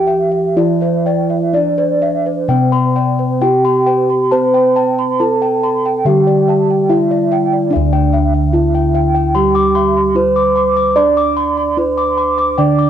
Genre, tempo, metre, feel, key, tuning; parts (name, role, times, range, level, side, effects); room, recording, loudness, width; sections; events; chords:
Javanese gamelan; 61-74 BPM; 4/4; straight; D slendro; A4 = 440 Hz
gamelan-type bronze metallophone; melody; 0.0-12.9 s; C4-40c to D5; -15 LUFS; equal
gamelan-type bronze metallophone; accompaniment; 0.0-12.9 s; D3 to D4; -20 LUFS; right 8 dB; cassette tape
gamelan-type bossed gongs; arpeggios; 0.0-12.9 s; C5-40c to D6; -19 LUFS; left 7 dB; cassette tape
gamelan-type bronze metallophone; arpeggios; 0.0-12.9 s; C5-40c to D6; -21 LUFS; right 7 dB; cassette tape
gamelan-type bossed gongs; bass; 0.0-12.9 s; D2 to D5; -18 LUFS; left 1 dB
moderate small room reverb, RT60 0.5 s; home recording on cassette; -11 LUFS; side -10 dB against mid
0.0-7.7 A section; 7.7-12.9 B section